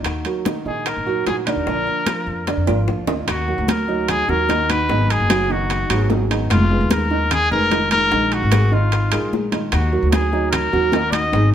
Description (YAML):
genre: latin, Cuban son and guajira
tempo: 149 BPM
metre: 4/4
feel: straight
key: Eb minor from 3.3 s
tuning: A4 = 440 Hz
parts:
  - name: nylon-string guitar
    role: accompaniment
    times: 0.0-11.5 s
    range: Cb3 to Ab4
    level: -27 LUFS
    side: left 1 dB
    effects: none
  - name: dark concert grand piano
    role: arpeggios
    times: 0.0-11.5 s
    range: D3 to Eb5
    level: -24 LUFS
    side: right 4 dB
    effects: none
  - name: upright bass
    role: bass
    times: 0.0-11.5 s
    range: F1 to F2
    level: -21 LUFS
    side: equal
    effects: none
  - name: timbales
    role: percussion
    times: 0.0-11.3 s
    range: none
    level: -26 LUFS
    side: right 6 dB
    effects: none
  - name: bongos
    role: percussion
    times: 0.1-11.5 s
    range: none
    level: -30 LUFS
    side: left 4 dB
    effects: none
  - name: claves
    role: percussion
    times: 0.1-11.3 s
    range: none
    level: -39 LUFS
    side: left 6 dB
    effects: none
  - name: congas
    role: percussion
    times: 0.1-11.5 s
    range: none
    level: -26 LUFS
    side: left 2 dB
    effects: none
  - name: warm trumpet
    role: melody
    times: 0.7-11.5 s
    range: F4 to Eb5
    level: -21 LUFS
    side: left 2 dB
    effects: none
room: moderate stone room reverb, RT60 1.1 s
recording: band playing live in one room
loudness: -16 LUFS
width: side -10 dB against mid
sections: 0.0-3.3 A section; 3.3-11.5 B section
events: drum fill 2.5-3.3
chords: 0.1 Ebm; 1.7 Bb; 3.3 Ebm; 4.9 Abm7; 6.5 Fm7b5; 8.1 Bb7sus4; 9.7 Ebm